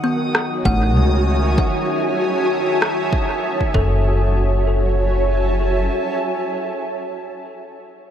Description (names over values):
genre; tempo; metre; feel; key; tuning
ambient dub; 97 BPM; 4/4; swing 56% on 16ths; F# dorian; A4 = 439 Hz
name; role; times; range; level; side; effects
granular cloud pad; sustained chords; 0.0-7.3 s; F#4 to A5; -21 LUFS; equal; built-in reverb
kalimba; arpeggios; 0.0-7.5 s; A3 to F#5; -27 LUFS; left 2 dB; low-pass filter, tape echo
bubbling stepped-filter texture; texture; 0.0-4.1 s; D#3 to D#6; -27 LUFS; equal; chorus, built-in reverb
electronic rim click; drums; 0.3-3.0 s; none; -23 LUFS; equal; dub echo
upright bass; bass; 0.7-5.9 s; F#1 to C#2; -18 LUFS; equal; none
electronic kick drum; drums; 0.7-3.9 s; none; -20 LUFS; equal; overdrive
room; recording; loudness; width
light reverb, digital ambience; none; -16 LUFS; side -9 dB against mid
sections
0.0-4.1 A section; 4.1-6.5 B section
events
none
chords
0.0 F#m7; 3.7 F#m; 4.1 F#m7